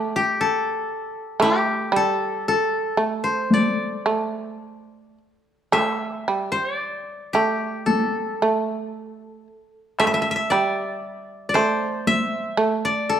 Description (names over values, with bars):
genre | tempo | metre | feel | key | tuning
japanese traditional, Japanese chamber music | 53-59 BPM | 4/4 | rubato | unclear | A4 = 439 Hz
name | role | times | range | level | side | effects
koto | melody | 0.0-13.2 s | G4 to E5 | -23 LUFS | left 2 dB | none
shamisen | second line | 0.0-13.2 s | G3 to A3 | -23 LUFS | right 3 dB | none
taiko ensemble | percussion | 1.4-12.3 s | none | -24 LUFS | left 2 dB | none
room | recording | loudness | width
moderate recital hall reverb, RT60 1.5 s | dark, warm production | -20 LUFS | side -9 dB against mid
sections
0.0-13.2 A section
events
none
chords
none